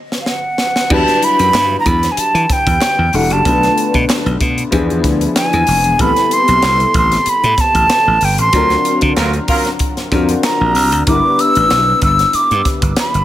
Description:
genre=polished 1980s jazz-funk pop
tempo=94 BPM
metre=4/4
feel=swing 54% on 16ths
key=E minor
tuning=A4 = 440 Hz
part: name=crisp fusion drum kit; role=drums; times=0.1-13.2 s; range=crash cymbal, hi-hat, kick drum, snare drum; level=-18 LUFS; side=equal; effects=none
part: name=breathy silver concert flute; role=melody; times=0.2-13.2 s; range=F5 to E6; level=-14 LUFS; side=right 1 dB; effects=none
part: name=warm grand piano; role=accompaniment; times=0.9-13.2 s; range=F3 to B4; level=-18 LUFS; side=left 3 dB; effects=ensemble chorus
part: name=slap bass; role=bass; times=0.9-13.2 s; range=E1 to E3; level=-16 LUFS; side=equal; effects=none
part: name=group handclap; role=percussion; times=1.5-13.1 s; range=none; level=-28 LUFS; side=right 6 dB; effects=none
part: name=clear horn section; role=second line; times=9.2-9.7 s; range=F#3 to A#4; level=-20 LUFS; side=right 2 dB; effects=none
room=light reverb, small room ambience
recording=none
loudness=-11 LUFS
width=side -13 dB against mid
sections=0.9-13.2 A section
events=drum fill 0.0-0.9; stop 0.0-0.9; band accent 8.5-11.1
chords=0.0 N.C.; 0.9 Em9; 3.5 Bm7b5; 4.7 E7b9; 6.0 Am9; 8.5 D7alt; 11.1 G6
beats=0.27 | 0.90 1.54 2.18 2.81 | 3.45 4.09 4.72 5.36 | 5.99 6.63 7.26 7.90 | 8.53 9.16 9.80 10.43 | 11.07 11.70 12.34 12.97

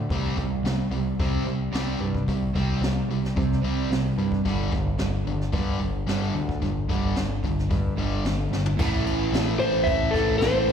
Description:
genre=hard rock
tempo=110 BPM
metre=4/4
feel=straight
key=A minor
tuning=A4 = 440 Hz
part: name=overdriven semi-hollow guitar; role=riff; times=0.0-10.7 s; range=G2 to C4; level=-28 LUFS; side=right 9 dB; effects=slapback echo
part: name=tight distorted guitar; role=riff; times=0.0-10.7 s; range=G2 to C4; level=-30 LUFS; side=left 8 dB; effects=distortion
part: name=growling picked electric bass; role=bass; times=0.0-10.7 s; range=G1 to C3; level=-27 LUFS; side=left 1 dB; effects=overdrive
part: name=jazz brush drum kit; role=drums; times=0.1-10.7 s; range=crash cymbal, hi-hat, kick drum, snare drum, toms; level=-29 LUFS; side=left 1 dB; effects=none
part: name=lightly driven lead guitar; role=melody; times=9.6-10.7 s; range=A4 to E5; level=-22 LUFS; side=left 2 dB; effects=slapback echo
room=light reverb, small room reverb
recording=live gig heard through the venue's PA, club reverb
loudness=-22 LUFS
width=side -8 dB against mid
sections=0.0-8.8 A section; 8.8-10.7 B section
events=drum fill 8.5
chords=0.1 C5; 4.5 G5; 8.8 A5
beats=| 0.11 0.65 1.20 1.74 | 2.28 2.83 3.37 3.91 | 4.46 5.00 5.54 6.08 | 6.63 7.17 7.71 8.25 | 8.80 9.34 9.88 10.42

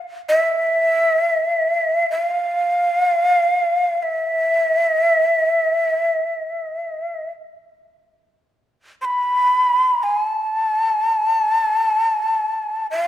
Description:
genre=japanese traditional, Japanese chamber music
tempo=free time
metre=none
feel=none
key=unclear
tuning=A4 = 440 Hz
part: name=breathy shakuhachi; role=solo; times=0.3-13.1 s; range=E5 to C6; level=-16 LUFS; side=equal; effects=none
room=moderate concert hall reverb, RT60 1.8 s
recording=minimal, uncompressed stereo recording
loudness=-16 LUFS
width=side -12 dB against mid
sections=0.0-13.1 A section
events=none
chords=none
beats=free time

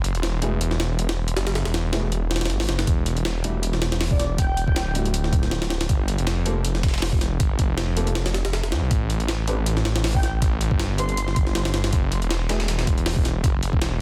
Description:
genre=drum and bass, jungle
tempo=159 BPM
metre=4/4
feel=swing 55% on 16ths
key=unclear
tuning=A4 = 435 Hz
part: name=detuned saw bass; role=bass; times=0.0-14.0 s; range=D1 to G2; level=-26 LUFS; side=equal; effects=none
part: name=jungle sampler-style drum kit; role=drums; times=0.0-13.9 s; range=hi-hat, kick drum, snare drum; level=-26 LUFS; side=equal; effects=studio reverb
part: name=dark grand piano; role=stabs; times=0.4-12.6 s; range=G3 to B4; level=-35 LUFS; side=equal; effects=none
part: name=breakbeat sampler-style drum kit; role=drums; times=2.9-13.9 s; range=hi-hat, snare drum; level=-38 LUFS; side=equal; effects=high-pass filter on hats, studio reverb, high-pass filter on snare, high-pass filter on room
part: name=breathy flute-like synth lead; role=melody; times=4.1-4.9, 10.1-11.4 s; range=D5 to C6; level=-36 LUFS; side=equal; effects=ensemble chorus, cassette tape, dub echo
room=little or no reverb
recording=dense, heavily limited modern master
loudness=-23 LUFS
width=mono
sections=0.0-14.0 A section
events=none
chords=0.0 F#7(no3); 2.9 E7(no3); 5.9 G7(no3); 8.9 A7(no3); 11.9 F#7(no3)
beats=0.23 0.61 0.99 | 1.36 1.74 2.12 2.50 | 2.87 3.25 3.63 4.01 | 4.38 4.76 5.14 5.51 | 5.89 6.27 6.65 7.02 | 7.40 7.78 8.16 8.53 | 8.91 9.29 9.67 10.04 | 10.42 10.80 11.18 11.55 | 11.93 12.31 12.69 13.06 | 13.44 13.82

